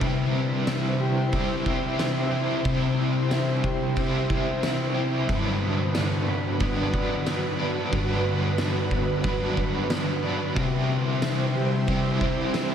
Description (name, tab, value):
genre	dream pop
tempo	91 BPM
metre	4/4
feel	straight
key	unclear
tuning	A4 = 438 Hz
part	crunchy overdriven guitar	accompaniment	0.0-12.7 s	G2 to B4	-28 LUFS	right 2 dB	tremolo, wide subtle chorus
part	ethereal airy pad	sustained chords	0.0-12.7 s	C3 to C5	-29 LUFS	right 1 dB	ensemble chorus, built-in reverb
part	mellow electric guitar	arpeggios	0.0-12.7 s	G2 to B4	-27 LUFS	left 3 dB	lush chorus, digital delay
part	oversized low-tuned drum kit	drums	0.0-12.7 s	kick drum, ride cymbal, snare drum, tambourine	-30 LUFS	equal	none
room	moderate concert hall reverb, RT60 2.1 s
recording	none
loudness	-22 LUFS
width	side -8 dB against mid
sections	0.0-12.7 A section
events	none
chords	0.0 C; 5.3 Gmaj7; 10.6 C